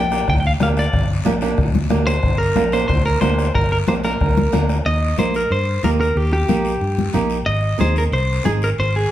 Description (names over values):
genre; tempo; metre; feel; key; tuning
latin, cumbia; 184 BPM; 4/4; straight; Eb major; A4 = 438 Hz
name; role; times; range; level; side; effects
clean electric guitar; melody; 0.0-9.1 s; G4 to G5; -21 LUFS; equal; spring reverb, plate reverb
fingered electric bass; bass; 0.0-9.0 s; G1 to G2; -20 LUFS; equal; none
flamenco guitar; accompaniment; 0.1-8.7 s; Bb3 to Bb4; -23 LUFS; right 4 dB; none
bombo; percussion; 0.1-4.9 s; none; -23 LUFS; left 1 dB; none
guiro; percussion; 0.1-9.1 s; none; -34 LUFS; left 4 dB; none
congas; percussion; 0.6-8.6 s; none; -23 LUFS; left 3 dB; none
room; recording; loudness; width
wet studio reverb, RT60 0.6 s; heard from further back in the room; -16 LUFS; side -12 dB against mid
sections
0.0-4.9 A section; 4.9-9.1 B section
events
none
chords
0.0 Gm; 4.9 Eb; 7.5 Ab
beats
0.28 0.60 | 0.93 1.26 1.59 1.91 | 2.24 2.57 2.89 3.22 | 3.55 3.88 4.20 4.53 | 4.86 5.18 5.51 5.84 | 6.16 6.49 6.82 7.15 | 7.47 7.80 8.13 8.45 | 8.78 9.11